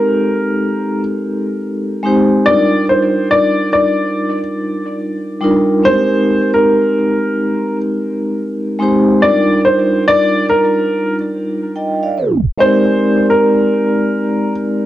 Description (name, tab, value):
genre	hip hop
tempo	71 BPM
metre	4/4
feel	swing 64% on 16ths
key	unclear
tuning	A4 = 441 Hz
part	clear upright piano	melody	0.0-14.5 s	Bb4 to D5	-14 LUFS	equal	low-pass filter, plate reverb, tape echo
part	vibraphone with soft mallets	accompaniment	0.0-14.9 s	G3 to G5	-14 LUFS	equal	low-pass filter, plate reverb
room	wet small room ambience, RT60 0.5 s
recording	tape stop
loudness	-12 LUFS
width	side -14 dB against mid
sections	0.0-12.6 A section; 12.6-14.9 B section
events	tape stop 12.2-12.6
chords	0.0 Abmaj9; 2.5 Ebmaj9/G; 5.8 Abmaj9; 9.2 Ebmaj13/G; 12.6 Abmaj9#11